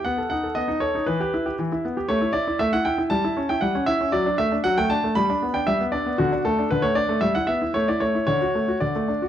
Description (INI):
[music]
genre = classical-period piano sonatina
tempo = 117 BPM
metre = 4/4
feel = straight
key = D major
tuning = A4 = 440 Hz
[part]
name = bright grand piano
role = solo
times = 0.0-9.3 s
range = D3 to B5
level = -20 LUFS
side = equal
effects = none
[sound]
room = moderate large studio reverb, RT60 1.2 s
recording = dark, warm production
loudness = -20 LUFS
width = side -10 dB against mid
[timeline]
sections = 0.0-9.3 A section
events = none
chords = 0.1 B7; 1.1 Em; 2.1 A5; 3.1 A7/G; 4.1 D/F#; 5.2 G; 6.2 D5; 7.2 Em/G; 7.7 A; 8.3 D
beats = | 0.05 0.56 1.07 1.58 | 2.09 2.60 3.11 3.62 | 4.14 4.65 5.17 5.68 | 6.19 6.70 7.22 7.74 | 8.27 8.81